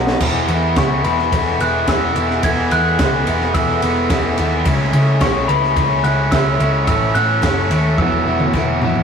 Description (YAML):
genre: indie rock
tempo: 108 BPM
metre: 4/4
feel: straight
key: E major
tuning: A4 = 438 Hz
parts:
  - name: overdriven electric guitar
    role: riff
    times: 0.0-9.0 s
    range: F#3 to A4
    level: -23 LUFS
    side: left 3 dB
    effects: none
  - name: overdriven electric guitar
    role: riff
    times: 0.0-9.0 s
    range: A2 to E4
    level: -20 LUFS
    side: right 2 dB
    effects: none
  - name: hollow-body short-scale picked electric bass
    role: bass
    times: 0.0-9.0 s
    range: E1 to C#3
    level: -20 LUFS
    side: equal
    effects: none
  - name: compact cocktail drum kit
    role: drums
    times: 0.1-9.0 s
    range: crash cymbal, kick drum, ride cymbal, snare drum, toms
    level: -20 LUFS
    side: equal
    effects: none
  - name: soft string machine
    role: sustained chords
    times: 1.2-9.0 s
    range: F#4 to C#6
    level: -34 LUFS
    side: right 1 dB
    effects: none
  - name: glockenspiel with rubber mallets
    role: melody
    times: 0.8-8.5 s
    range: B5 to G#6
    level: -21 LUFS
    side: equal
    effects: none
  - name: group handclap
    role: percussion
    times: 0.8-8.7 s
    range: none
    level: -38 LUFS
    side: left 1 dB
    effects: none
  - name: delicate synth tine bell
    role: second line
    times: 3.6-8.5 s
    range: B4 to F#5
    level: -32 LUFS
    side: equal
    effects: none
room: wet studio reverb, RT60 0.6 s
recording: rough rehearsal-room recording, warm saturation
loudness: -14 LUFS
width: side -6 dB against mid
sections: 0.2-9.0 A section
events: drum fill 0.0, 8.0-9.0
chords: 0.2 E; 4.7 C#m7; 6.9 A; 8.0 Esus2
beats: | 0.21 0.77 1.33 1.88 | 2.44 2.99 3.55 4.10 | 4.66 5.21 5.77 6.32 | 6.88 7.43 7.99 8.54